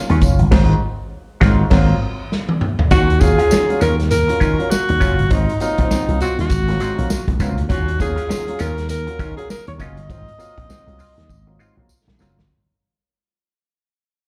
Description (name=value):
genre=funk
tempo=100 BPM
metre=4/4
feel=swing 60% on 16ths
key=unclear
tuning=A4 = 441 Hz
part: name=dark upright piano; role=stabs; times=0.0-12.4 s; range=Ab2 to F4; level=-28 LUFS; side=equal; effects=slapback echo
part: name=hollow-body jazz guitar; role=accompaniment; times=0.1-12.4 s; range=Gb3 to F4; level=-29 LUFS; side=equal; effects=wah, slapback echo
part: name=slap bass with an envelope filter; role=bass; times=0.1-12.5 s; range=Gb1 to Eb3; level=-20 LUFS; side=equal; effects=none
part: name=vintage drum kit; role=drums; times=0.1-12.5 s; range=crash cymbal, hi-hat, kick drum, snare drum, toms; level=-22 LUFS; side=equal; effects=none
part: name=tambourine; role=percussion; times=0.2-12.4 s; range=none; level=-37 LUFS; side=equal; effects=none
part: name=breathy alto saxophone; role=melody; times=2.9-11.9 s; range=Eb4 to Eb5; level=-23 LUFS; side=equal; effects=slapback echo
room=small room ambience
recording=live gig heard through the venue's PA, club reverb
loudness=-17 LUFS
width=mono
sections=0.0-2.9 A section; 2.9-12.5 B section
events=band accent 0.5-2.9; drum fill 2.3-2.9, 11.3-12.5; fade-out 2.9-12.5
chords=0.0 Ebm9; 0.5 Ab13; 2.9 Ebm9; 5.3 Ab13; 7.7 Ebm9; 10.1 Ab13